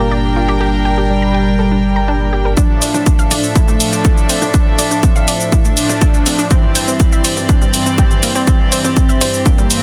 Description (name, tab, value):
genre	melodic techno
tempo	122 BPM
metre	4/4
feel	straight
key	D minor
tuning	A4 = 440 Hz
part	unison lead	melody	0.0-9.8 s	G3 to E4	-23 LUFS	equal	subtle chorus, sidechain pumping, digital delay
part	rich chamber string section	sustained chords	0.0-9.8 s	C4 to G5	-24 LUFS	equal	sidechain pumping
part	analog pluck	arpeggios	0.0-9.6 s	G3 to Bb5	-24 LUFS	equal	chorus, cassette tape, sidechain pumping, digital delay
part	brassy analog pad	stabs	0.0-9.8 s	G2 to D4	-22 LUFS	equal	chorus, cassette tape, sidechain pumping, digital delay
part	round analog bass	bass	0.0-2.5 s	G1	-20 LUFS	equal	sidechain pumping
part	electronic kick drum	drums	2.6-9.6 s	none	-14 LUFS	equal	overdrive
part	punchy analog drum machine	drums	2.6-9.8 s	hi-hat, shaker, toms	-20 LUFS	equal	high-pass filter on toms, high-pass filter on perc, high-pass filter on hats
room	light reverb, digital ambience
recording	dense, heavily limited modern master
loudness	-13 LUFS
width	mono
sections	0.0-2.6 A section; 2.6-9.8 B section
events	build-up 2.6-9.8; filter sweep on analog synth lead 2.6-9.8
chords	0.0 Gm; 2.6 Dm; 6.5 C